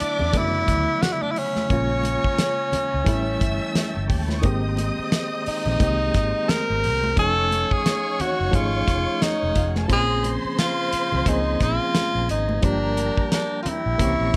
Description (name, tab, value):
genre	lush 1970s-style soul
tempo	88 BPM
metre	4/4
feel	swing 58% on 16ths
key	unclear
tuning	A4 = 438 Hz
part	breathy tenor saxophone	melody	0.0-14.4 s	Db4 to Bb4	-26 LUFS	equal	none
part	dark studio string section	second line	0.0-14.4 s	F4 to E6	-34 LUFS	equal	none
part	barky reed electric piano	accompaniment	0.0-14.4 s	Db3 to G#5	-31 LUFS	equal	overdrive, fast tremolo
part	tonewheel organ	sustained chords	0.0-14.4 s	Db3 to Db6	-38 LUFS	equal	overdrive, fast rotary speaker
part	vintage muted fingered electric bass	bass	0.0-14.4 s	F1 to F#2	-28 LUFS	equal	none
part	damped 70s drum kit	drums	0.0-14.4 s	hi-hat, kick drum, snare drum	-26 LUFS	equal	none
part	congas	percussion	0.2-14.4 s	none	-35 LUFS	equal	none
room	little or no reverb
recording	tape saturation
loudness	-22 LUFS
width	mono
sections	0.0-14.4 A section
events	none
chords	0.0 D69; 1.7 Bbm7; 3.1 A7#11; 4.4 Abmaj9; 7.2 F7alt; 9.9 Bbm9; 12.6 Gm7